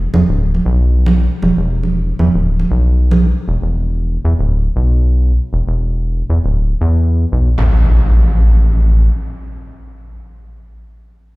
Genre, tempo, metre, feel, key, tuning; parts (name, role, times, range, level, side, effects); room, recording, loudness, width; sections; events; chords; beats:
deep house; 117 BPM; 4/4; swing 57% on 16ths; A4 = 439 Hz
rubbery square bass; bass; 0.0-9.1 s; D1 to E2; -12 LUFS; equal
congas; percussion; 0.1-3.2 s; -17 LUFS; right 3 dB
impact; sound effects; 7.6-10.7 s; -19 LUFS; equal
little or no reverb; played on a big sound system in a bare room, stone room reverb; -12 LUFS; side -21 dB against mid
0.0-7.6 A section; 7.6-11.4 B section
0.40 0.91 | 1.42 1.94 2.45 2.96 | 3.48 3.99 4.50 5.01 | 5.53 6.04 6.55 7.07 | 7.58 8.09 8.60 9.12 | 9.63 10.14 10.65